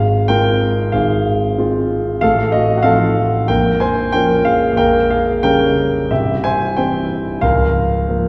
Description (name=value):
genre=classical, romantic character piece for solo piano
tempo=92 BPM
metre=4/4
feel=rubato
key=F minor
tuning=A4 = 441 Hz
part: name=warm concert grand piano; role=solo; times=0.0-8.3 s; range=Bb0 to Ab5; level=-16 LUFS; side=equal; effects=none
room=wet scoring stage reverb, RT60 1.6 s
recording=heard from further back in the room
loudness=-16 LUFS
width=mono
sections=0.0-8.3 A section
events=none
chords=0.0 Fm/Ab; 2.2 F7/A; 3.5 Bbm; 4.8 Gdim/Bb; 6.1 C; 7.4 Bbm/Db